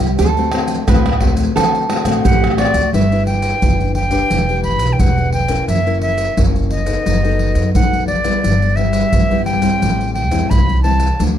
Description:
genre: samba and choro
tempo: 87 BPM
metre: 4/4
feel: straight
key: G major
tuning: A4 = 440 Hz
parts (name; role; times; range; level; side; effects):
- lap resonator guitar; second line; 0.0-2.9 s; F#4 to B4; -20 LUFS; right 6 dB; none
- nylon-string guitar; accompaniment; 0.0-11.4 s; G2 to B4; -20 LUFS; left 4 dB; none
- upright bass; bass; 0.0-11.4 s; E1 to D3; -18 LUFS; equal; none
- maracas, surdo, pandeiro and tamborim; percussion; 0.2-11.4 s; none; -18 LUFS; equal; none
- breathy bright concert flute; melody; 2.2-11.2 s; D5 to B5; -19 LUFS; right 1 dB; none
room: light reverb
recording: dark, warm production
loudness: -13 LUFS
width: side -10 dB against mid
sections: 0.0-2.9 A section; 2.9-11.4 B section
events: none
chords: 0.2 D7; 2.9 G6; 4.3 Em7; 5.7 F#7; 7.1 B7/F#; 8.4 Em/G; 9.8 Am7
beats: | 0.19 0.88 1.56 2.25 | 2.94 3.62 4.31 5.00 | 5.69 6.37 7.06 7.75 | 8.44 9.13 9.81 10.50 | 11.19

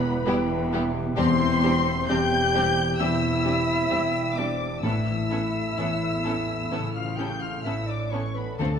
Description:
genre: cinematic, emotional film score for orchestra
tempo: 64 BPM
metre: 4/4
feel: rubato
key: unclear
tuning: A4 = 442 Hz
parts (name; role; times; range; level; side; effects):
- dark studio violin section; melody; 0.0-8.8 s; A5 to G6; -30 LUFS; left 4 dB; none
- hollow concert flute; second line; 0.0-8.8 s; A4 to G5; -31 LUFS; left 1 dB; none
- felt-muted upright piano; accompaniment; 0.0-8.8 s; D2 to E3; -31 LUFS; left 3 dB; none
- clear French horn section; sustained chords; 0.0-8.8 s; A3 to G4; -30 LUFS; equal; none
- concert harp; arpeggios; 0.0-8.8 s; A2 to G5; -32 LUFS; left 5 dB; none
- dark studio double bass section; bass; 0.0-8.8 s; E1 to D2; -34 LUFS; right 4 dB; none
- warm studio cello section; bass; 0.0-8.8 s; D2 to C#3; -30 LUFS; right 3 dB; none
- warm studio violin section; second line; 0.3-8.7 s; D4 to A4; -36 LUFS; left 2 dB; none
- warm studio viola section; accompaniment; 0.3-8.7 s; G3 to C#4; -33 LUFS; right 3 dB; none
room: moderate scoring stage reverb, RT60 1.7 s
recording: minimal, uncompressed stereo recording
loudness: -22 LUFS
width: side -7 dB against mid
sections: 0.0-8.8 A section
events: none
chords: 0.0 Em; 1.2 Cadd9/E; 4.8 Aadd9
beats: 0.27 | 1.17 2.10 3.00 3.91 | 4.84 5.78 6.72 7.66 | 8.60

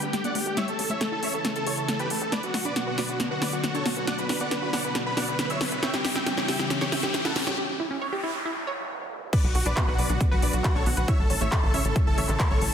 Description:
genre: uplifting trance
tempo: 137 BPM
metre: 4/4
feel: straight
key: B minor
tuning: A4 = 440 Hz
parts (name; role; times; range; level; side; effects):
- dense compressed supersaw; melody; 0.0-12.7 s; F#4 to G5; -30 LUFS; equal; cassette tape, sidechain pumping, low-pass filter, digital delay
- lush unison pad; sustained chords; 0.0-12.7 s; B2 to A4; -34 LUFS; left 1 dB; chorus, phaser, sidechain pumping
- tight sequenced synth; arpeggios; 0.0-12.2 s; A3 to C#5; -34 LUFS; right 2 dB; chorus, sidechain pumping, dub echo
- tight sequencer bass; bass; 0.0-12.7 s; G1 to A2; -31 LUFS; equal; sidechain pumping, high-pass filter
- big-room dance drum kit; drums; 0.0-12.7 s; crash cymbal, handclaps, hi-hat, snare drum; -29 LUFS; equal; overdrive
- riser and noise sweep; sound effects; 4.5-9.3 s; none; -36 LUFS; left 1 dB; none
- electronic kick drum; drums; 9.3-12.5 s; none; -24 LUFS; equal; overdrive
room: moderate lush hall reverb, RT60 1.5 s, digital ambience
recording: dense, heavily limited modern master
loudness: -23 LUFS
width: side -8 dB against mid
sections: 0.0-9.3 A section; 9.3-12.7 B section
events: build-up 0.0-9.3; drum fill 0.0-7.6; filter sweep on synth arpeggio sound 0.0-9.3; riser 4.5-7.6; break 7.6-9.3; noise sweep 7.6-9.3; drop 9.3-12.7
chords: 0.0 Gadd9; 0.6 A; 2.3 Bm; 5.8 C#dim; 9.3 Bm; 11.1 A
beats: 0.13 | 0.57 1.01 1.45 1.89 | 2.32 2.76 3.20 3.64 | 4.08 4.51 4.95 5.39 | 5.83 6.26 6.70 7.14 | 7.58 8.02 8.45 8.89 | 9.33 9.77 10.21 10.64 | 11.08 11.52 11.96 12.40

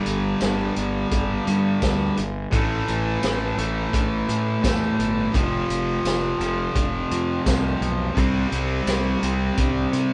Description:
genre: classic rock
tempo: 85 BPM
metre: 4/4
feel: straight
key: A minor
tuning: A4 = 441 Hz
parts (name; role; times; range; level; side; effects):
- sludgy distorted guitar; riff; 0.0-10.1 s; F2 to C4; -28 LUFS; equal; overdrive
- tight distorted guitar; riff; 0.0-10.1 s; F2 to C4; -29 LUFS; equal; distortion
- fuzz fingered electric bass; bass; 0.1-10.1 s; F1 to C3; -29 LUFS; equal; overdrive
- vintage drum kit; drums; 0.1-10.1 s; hi-hat, kick drum, snare drum, tambourine; -28 LUFS; equal; none
room: moderate small room reverb, RT60 0.5 s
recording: band playing live in one room, nothing above 10.3 kHz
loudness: -23 LUFS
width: mono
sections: 0.0-10.1 A section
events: none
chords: 0.0 G5; 2.5 A5; 5.3 F5; 8.2 C5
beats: 0.41 1.12 1.82 | 2.53 3.23 3.94 4.64 | 5.35 6.05 6.76 7.46 | 8.17 8.87 9.58

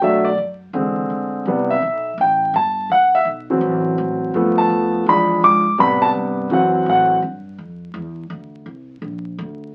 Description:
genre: jazz, big band swing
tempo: 166 BPM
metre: 4/4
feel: swing 64% on 8ths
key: unclear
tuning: A4 = 440 Hz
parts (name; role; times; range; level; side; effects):
- warm concert grand piano; accompaniment; 0.0-7.2 s; C3 to D6; -18 LUFS; equal; none
- upright bass; bass; 0.0-9.7 s; G1 to B2; -33 LUFS; equal; none
room: wet studio ambience, RT60 0.5 s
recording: very old 78 rpm record, vinyl crackle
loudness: -18 LUFS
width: mono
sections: 0.0-7.2 A section; 7.2-9.7 B section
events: grand piano solo 0.0-7.2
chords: 0.0 Bm7; 0.7 Eaug7; 1.5 Am7; 2.9 D9; 4.3 G9; 5.1 E7b9; 5.8 Am7; 6.5 F#m7b5; 7.2 G5; 8.7 Csus2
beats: | 0.01 0.38 0.74 1.10 | 1.46 1.82 2.18 2.54 | 2.90 3.26 3.62 3.98 | 4.34 4.70 5.06 5.42 | 5.78 6.14 6.50 6.87 | 7.22 7.58 7.95 8.31 | 8.67 9.03 9.39

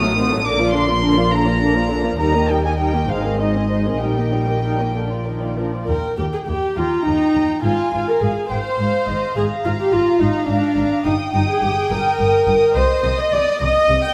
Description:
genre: quick classical-period movement for string orchestra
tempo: 63-72 BPM (dotted quarters)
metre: 6/8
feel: rubato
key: Eb major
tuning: A4 = 438 Hz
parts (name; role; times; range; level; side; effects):
- warm studio violin section; melody; 0.0-14.1 s; Eb5 to Eb6; -28 LUFS; equal; none
- dark symphonic violin section; second line; 0.0-14.1 s; D4 to Bb5; -27 LUFS; equal; none
- rich studio viola section; accompaniment; 0.0-14.1 s; D3 to G5; -21 LUFS; equal; none
- dark studio double bass section; bass; 0.0-14.0 s; G1 to Eb2; -26 LUFS; equal; none
- warm studio cello section; bass; 0.0-14.0 s; Eb2 to C3; -28 LUFS; equal; none
room: wet scoring stage reverb, RT60 1.5 s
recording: none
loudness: -18 LUFS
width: mono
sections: 0.0-5.9 A section; 5.9-14.1 A section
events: none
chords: 0.5 Bb; 2.2 Eb; 3.1 Ab; 4.0 Eb/Bb; 5.0 Bb; 5.9 Eb; 7.6 Fm/Ab; 9.4 Bb7/Ab; 11.1 Eb/G; 12.8 Cm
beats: | 0.45 1.32 | 2.19 3.09 | 4.02 4.95 | 5.88 6.77 | 7.64 8.51 | 9.37 10.21 | 11.05 11.91 | 12.76 13.61

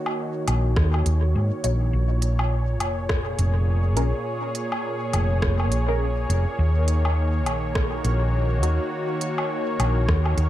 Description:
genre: ambient dub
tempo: 103 BPM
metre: 4/4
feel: swing 59% on 16ths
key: Eb minor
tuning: A4 = 440 Hz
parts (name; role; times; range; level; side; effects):
- warm analog pad; sustained chords; 0.0-10.5 s; Bb2 to Db5; -27 LUFS; equal; lush chorus
- organic electronic drum kit; drums; 0.1-10.5 s; hi-hat, rim click, woodblock; -31 LUFS; equal; dub echo
- hollow-body short-scale fingered electric bass; bass; 0.5-10.5 s; F1 to Ab2; -21 LUFS; equal; tube saturation
- electronic kick drum; drums; 0.8-10.2 s; none; -24 LUFS; equal; none
- filtered dub chord stab; stabs; 1.6-8.8 s; Db4 to Db5; -34 LUFS; left 1 dB; phaser, analog chorus, dub echo
room: light reverb, digital ambience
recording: none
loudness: -21 LUFS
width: side -13 dB against mid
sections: 0.0-10.5 A section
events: none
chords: 0.0 Ebm7; 1.9 Bbm7; 6.6 Ebm7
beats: 0.18 0.76 1.35 | 1.93 2.51 3.09 3.68 | 4.26 4.84 5.42 6.01 | 6.59 7.17 7.75 8.34 | 8.92 9.50 10.09

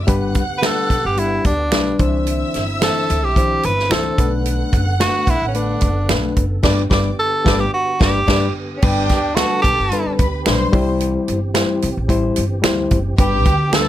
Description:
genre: uptempo 1960s-style soul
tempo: 110 BPM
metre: 4/4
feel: straight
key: G major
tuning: A4 = 440 Hz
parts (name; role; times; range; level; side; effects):
- warm studio string section; second line; 0.0-13.9 s; G4 to F#6; -26 LUFS; right 2 dB; none
- tonewheel organ; sustained chords; 0.0-13.9 s; D3 to A4; -30 LUFS; right 2 dB; slow rotary speaker, overdrive, chorus vibrato
- upright bass; bass; 0.0-13.9 s; F#1 to D2; -22 LUFS; equal; none
- reed electric piano; accompaniment; 0.1-13.9 s; E3 to C5; -21 LUFS; left 4 dB; overdrive
- natural country drum kit; drums; 0.1-13.9 s; crash cymbal, hi-hat, kick drum, snare drum; -18 LUFS; right 1 dB; none
- clear tenor saxophone; melody; 0.6-13.9 s; C#4 to B4; -19 LUFS; right 1 dB; none
- finger snap; percussion; 0.6-13.9 s; none; -24 LUFS; right 9 dB; none
room: light reverb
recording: none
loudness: -15 LUFS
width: side -12 dB against mid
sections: 0.0-8.8 A section; 8.8-13.9 B section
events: band accent 6.6-8.8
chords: 0.1 G; 2.0 Cadd9; 4.2 Bm7; 6.6 G; 10.7 C; 13.2 G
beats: | 0.08 0.63 1.18 1.72 | 2.27 2.81 3.36 3.91 | 4.46 5.00 5.55 6.09 | 6.64 7.19 7.73 8.28 | 8.82 9.37 9.92 10.46 | 11.01 11.55 12.10 12.64 | 13.18 13.73

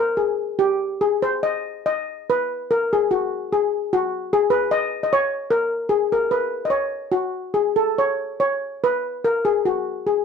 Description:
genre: fado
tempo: 73 BPM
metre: 2/4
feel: uneven beats, rubato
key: G# minor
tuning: A4 = 438 Hz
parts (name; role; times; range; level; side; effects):
- steel pan; solo; 0.0-10.2 s; F#4 to Eb5; -19 LUFS; left 2 dB; none
room: moderate studio reverb, RT60 0.6 s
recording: none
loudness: -19 LUFS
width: side -6 dB against mid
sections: 0.0-1.8 A section; 1.8-10.2 B section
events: none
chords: none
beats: | 0.17 1.00 | 1.85 2.70 | 3.51 4.31 | 5.11 5.91 | 6.72 7.55 | 8.40 9.25 | 10.09

